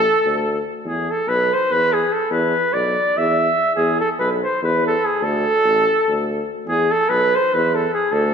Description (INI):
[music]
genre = balkan folk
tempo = 289 BPM (eighths)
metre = 7/8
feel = straight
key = unclear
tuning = A4 = 441 Hz
[part]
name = warm flugelhorn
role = melody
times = 0.0-8.3 s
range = G#4 to E5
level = -17 LUFS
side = equal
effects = none
[part]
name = warm tuba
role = bass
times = 0.0-8.3 s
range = A1 to E2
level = -24 LUFS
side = equal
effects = none
[sound]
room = wet concert hall reverb, RT60 1.9 s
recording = recorded in a church or concert hall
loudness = -16 LUFS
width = side -6 dB against mid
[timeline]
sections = 0.0-3.8 A section; 3.8-8.3 A section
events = none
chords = 0.0 D5; 0.8 E5; 5.2 D5; 6.7 E5